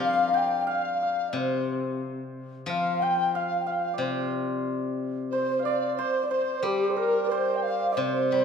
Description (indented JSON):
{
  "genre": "chinese traditional, Chinese chamber ensemble",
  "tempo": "90 BPM",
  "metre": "4/4",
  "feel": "rubato",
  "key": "C shang mode",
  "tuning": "A4 = 440 Hz",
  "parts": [
    { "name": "mellow low xiao", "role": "melody", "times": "0.0-8.4 s", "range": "G4 to G5", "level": "-28 LUFS", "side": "equal", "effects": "none" },
    { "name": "hammered dulcimer", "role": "second line", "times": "0.0-8.4 s", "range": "G4 to Bb5", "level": "-31 LUFS", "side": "right 5 dB", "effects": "none" },
    { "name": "mellow hollow large dizi", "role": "second line", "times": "0.0-8.4 s", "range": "G4 to G5", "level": "-30 LUFS", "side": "left 3 dB", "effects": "none" },
    { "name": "steel-string zither", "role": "accompaniment", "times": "0.0-8.4 s", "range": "C3 to G4", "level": "-32 LUFS", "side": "left 4 dB", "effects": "none" }
  ],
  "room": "wet recital hall reverb, RT60 1.4 s",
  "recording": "none",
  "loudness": "-24 LUFS",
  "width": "side -6 dB against mid",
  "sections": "0.0-8.4 A section",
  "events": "none",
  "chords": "none"
}